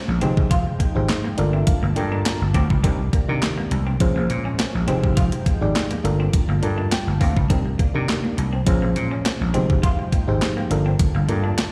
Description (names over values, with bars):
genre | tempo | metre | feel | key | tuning
early-eighties boogie funk | 103 BPM | 4/4 | straight | unclear | A4 = 439 Hz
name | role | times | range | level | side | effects
FM electric piano | accompaniment | 0.0-11.7 s | Db4 to D6 | -30 LUFS | equal | slapback echo
warm analog pad | sustained chords | 0.0-11.7 s | C3 to A5 | -34 LUFS | equal | chorus
vintage slap bass | bass | 0.1-11.5 s | F1 to C3 | -24 LUFS | equal | none
congas | percussion | 0.1-11.7 s | none | -35 LUFS | equal | none
semi-hollow electric guitar | riff | 0.2-11.5 s | Bb3 to F4 | -34 LUFS | equal | subtle chorus, slapback echo
clean 12-bit digital drum machine | drums | 0.2-11.7 s | handclaps, hi-hat, kick drum, snare drum | -23 LUFS | equal | overdrive
room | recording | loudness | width
little or no reverb | live gig heard through the venue's PA, recital hall reverb | -21 LUFS | mono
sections
0.0-11.7 A section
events
FM electric piano fill 1.1-2.8, 6.6-7.5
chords
0.2 Fm9; 1.4 Gm9; 2.8 Cm9; 4.0 Bbm9; 4.9 Fm9; 6.0 Gm9; 7.5 Cm9; 8.7 Bbm9; 9.5 Fm9; 10.7 Gm9